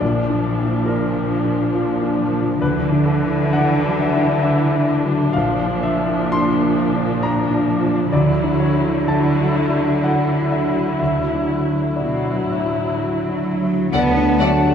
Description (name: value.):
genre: cinematic.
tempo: 60-70 BPM.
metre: 3/4.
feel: rubato.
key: unclear.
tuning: A4 = 440 Hz.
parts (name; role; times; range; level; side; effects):
warm grand piano; accompaniment; 0.0-14.7 s; Bb1 to C6; -20 LUFS; left 1 dB; none.
warm studio viola section; accompaniment; 0.0-14.5 s; E3 to A4; -24 LUFS; equal; none.
concert harp; arpeggios; 0.0-14.7 s; Bb2 to F5; -25 LUFS; left 2 dB; none.
warm studio cello section; bass; 0.0-14.7 s; A2 to B3; -22 LUFS; right 2 dB; none.
warm studio violin section; melody; 13.9-14.5 s; F#5; -26 LUFS; left 4 dB; none.
dark studio violin section; second line; 13.9-14.5 s; D5; -27 LUFS; left 4 dB; none.
mellow clarinet; second line; 13.9-14.7 s; D5; -28 LUFS; right 4 dB; none.
silver concert flute; second line; 13.9-14.7 s; A5; -24 LUFS; left 2 dB; none.
warm oboe; second line; 13.9-14.7 s; F#5; -24 LUFS; right 2 dB; none.
warm French horn section; sustained chords; 13.9-14.7 s; F#3 to D4; -23 LUFS; left 4 dB; none.
dark studio double bass section; bass; 13.9-14.7 s; D2; -23 LUFS; right 4 dB; none.
room: wet scoring stage reverb, RT60 1.9 s.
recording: heard from further back in the room.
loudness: -16 LUFS.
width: side -8 dB against mid.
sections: 0.0-13.9 A section.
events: none.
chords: 0.0 Bb; 2.6 Dadd9; 5.3 Bb; 8.1 Dadd9.